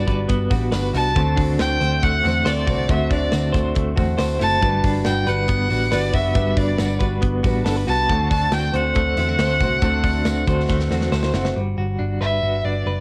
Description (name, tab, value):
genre	jangly indie pop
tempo	138 BPM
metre	4/4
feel	straight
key	G major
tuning	A4 = 440 Hz
part	rich violin	melody	0.0-13.0 s	D5 to A5	-25 LUFS	equal	cassette tape
part	fingerpicked steel-string acoustic guitar	accompaniment	0.0-11.6 s	D3 to C5	-28 LUFS	equal	none
part	direct-recorded clean electric guitar	arpeggios	0.0-13.0 s	D3 to C5	-27 LUFS	equal	tremolo
part	vintage muted picked electric bass	bass	0.0-13.0 s	F#1 to E2	-26 LUFS	equal	none
part	modern studio drum kit	drums	0.1-11.6 s	hi-hat, kick drum, snare drum	-27 LUFS	equal	cassette tape
part	tambourine	percussion	0.3-11.4 s	none	-46 LUFS	equal	none
room	small room reverb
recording	home recording on cassette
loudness	-20 LUFS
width	mono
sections	0.0-11.6 A section; 11.6-13.0 B section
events	drum fill 10.7-11.6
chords	0.0 Gmaj7; 1.2 D7; 4.6 Gmaj7; 8.1 D7; 11.6 Gmaj7